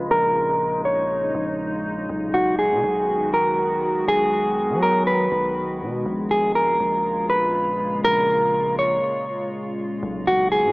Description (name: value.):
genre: hip hop.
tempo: 121 BPM.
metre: 4/4.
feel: half-time.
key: B lydian.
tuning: A4 = 440 Hz.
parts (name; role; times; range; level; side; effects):
mellow electric guitar; melody; 0.0-10.7 s; F#4 to C#5; -20 LUFS; equal; low-pass filter, tape echo.
glassy FM pad; sustained chords; 0.0-10.7 s; A#2 to F#4; -27 LUFS; equal; ensemble chorus, built-in reverb, low-pass filter.
long sustained 808-style bass; bass; 0.0-10.7 s; A#1 to F#3; -30 LUFS; equal; none.
room: moderate lush hall reverb, RT60 2.5 s.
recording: worn, warbling old tape, cassette tape, warbly pitch drift, small speaker sound.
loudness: -19 LUFS.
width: side -24 dB against mid.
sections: 0.0-10.0 A section.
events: filter sweep 0.0-10.0; break 9.0-10.0.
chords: 0.0 A#m7; 2.1 B6; 6.1 A#m7; 10.0 B6.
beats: | 0.11 0.61 1.10 1.60 | 2.09 2.59 3.08 3.58 | 4.08 4.57 5.07 5.56 | 6.06 6.56 7.05 7.55 | 8.04 8.54 9.04 9.53 | 10.03 10.52.